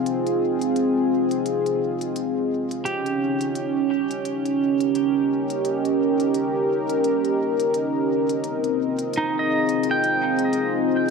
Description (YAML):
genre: ambient dub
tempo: 86 BPM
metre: 4/4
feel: swing 58% on 16ths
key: F minor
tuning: A4 = 440 Hz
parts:
  - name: warm analog pad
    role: sustained chords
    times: 0.0-11.1 s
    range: C4 to Eb5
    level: -21 LUFS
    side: equal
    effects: chorus
  - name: electronic hi-hat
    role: drums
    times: 0.1-10.7 s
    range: none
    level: -40 LUFS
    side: left 3 dB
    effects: dub echo
  - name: pedal steel guitar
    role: arpeggios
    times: 2.9-11.1 s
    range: Eb4 to G5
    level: -26 LUFS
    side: right 2 dB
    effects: dub echo
room: moderate echo chamber reverb, RT60 2.0 s, digital ambience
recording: echo-heavy mix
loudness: -20 LUFS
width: side -5 dB against mid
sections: 0.0-11.1 A section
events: none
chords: 0.0 Fm7; 2.9 Eb7; 8.4 Fm7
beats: | 0.06 0.76 1.46 2.16 | 2.85 3.55 4.25 4.95 | 5.65 6.34 7.04 7.74 | 8.44 9.13 9.83 10.53